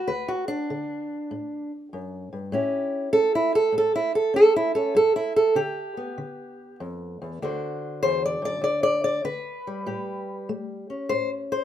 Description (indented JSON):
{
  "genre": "acoustic country blues, solo or duo",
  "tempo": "98 BPM",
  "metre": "4/4",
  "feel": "swing 66% on 8ths",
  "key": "D major",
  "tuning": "A4 = 440 Hz",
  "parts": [
    { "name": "fingerpicked old ladder-braced acoustic guitar", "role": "solo", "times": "0.0-11.6 s", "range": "D2 to D5", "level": "-22 LUFS", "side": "equal", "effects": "none" }
  ],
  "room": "light reverb",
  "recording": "minimal, uncompressed stereo recording",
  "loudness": "-22 LUFS",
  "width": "side -11 dB against mid",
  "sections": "0.0-11.6 A section",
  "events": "steel-string acoustic guitar solo 0.0-11.6",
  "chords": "0.0 D; 2.5 A7; 5.0 G7; 7.4 D7; 8.6 G; 9.9 A7"
}